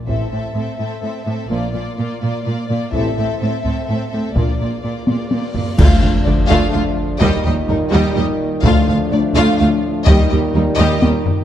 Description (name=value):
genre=cinematic, epic orchestral film score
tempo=126 BPM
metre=3/4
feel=straight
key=A phrygian, D phrygian from 5.8 s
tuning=A4 = 440 Hz
part: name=warm symphonic violin section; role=melody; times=0.1-11.1 s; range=Bb4 to F5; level=-25 LUFS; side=left 4 dB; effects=none
part: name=warm symphonic violin section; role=second line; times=0.1-11.1 s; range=D4 to A4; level=-27 LUFS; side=left 3 dB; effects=none
part: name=warm symphonic viola section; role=accompaniment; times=0.1-11.1 s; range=G3 to C4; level=-23 LUFS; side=right 1 dB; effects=none
part: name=clear trombone section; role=sustained chords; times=0.1-11.4 s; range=A2 to F3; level=-26 LUFS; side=right 4 dB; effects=none
part: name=dark French horn section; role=sustained chords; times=0.1-11.4 s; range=G3 to E4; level=-23 LUFS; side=left 4 dB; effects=none
part: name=warm symphonic cello section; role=bass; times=0.1-11.1 s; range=D2 to Bb2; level=-21 LUFS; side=right 2 dB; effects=none
part: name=warm symphonic double bass section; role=bass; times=0.1-11.1 s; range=A1 to Eb2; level=-21 LUFS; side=right 2 dB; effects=none
part: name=taiko ensemble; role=drums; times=0.1-11.4 s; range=none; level=-17 LUFS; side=equal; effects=none
part: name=cymbal swell, clash cymbals and concert bass drum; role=percussion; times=2.9-6.7 s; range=none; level=-20 LUFS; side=equal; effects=none
part: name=reverse cymbal and impact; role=sound effects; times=5.6-7.2 s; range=none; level=-27 LUFS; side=equal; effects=none
room=moderate scoring stage reverb, RT60 2.0 s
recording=dark, warm production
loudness=-14 LUFS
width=side -11 dB against mid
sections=0.1-5.8 A section; 5.8-11.4 B section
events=drum fill 5.1-5.8, 10.8-11.4; reverse cymbal 5.6; band accent 5.8-6.3; impact 5.8-7.2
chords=0.1 Am; 1.5 Bb; 2.9 Am; 4.4 Bb; 5.8 Dm; 7.2 Eb; 8.6 Dm; 10.1 Eb